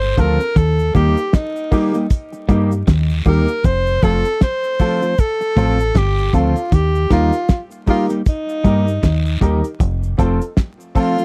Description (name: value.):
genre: roots reggae.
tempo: 78 BPM.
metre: 4/4.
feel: swing 59% on 16ths.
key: unclear.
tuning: A4 = 442 Hz.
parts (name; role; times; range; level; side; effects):
breathy tenor saxophone; melody; 0.0-11.2 s; Eb4 to C5; -23 LUFS; equal; none.
clean electric guitar; riff; 0.0-10.3 s; F2 to G3; -25 LUFS; equal; none.
deep dub fingered electric bass; bass; 0.0-10.4 s; F1 to G2; -20 LUFS; equal; none.
cabasa and guiro; percussion; 0.0-11.2 s; none; -38 LUFS; equal; none.
mellow electric guitar; accompaniment; 0.2-11.2 s; F3 to G4; -23 LUFS; equal; none.
warm upright piano; stabs; 0.2-11.2 s; Bb3 to Bb4; -25 LUFS; equal; none.
cloth-damped thuddy drum kit; drums; 0.2-11.2 s; hi-hat, kick drum, snare drum; -18 LUFS; equal; none.
room: little or no reverb.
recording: dry, close 1970s-style studio recording, vinyl crackle.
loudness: -17 LUFS.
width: mono.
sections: 0.0-11.2 A section.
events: none.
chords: 0.0 F; 0.6 Eb; 3.6 F; 6.7 Eb; 9.8 F.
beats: | 0.56 1.33 2.10 2.87 | 3.64 4.41 5.18 5.95 | 6.72 7.49 8.26 9.03 | 9.80 10.57.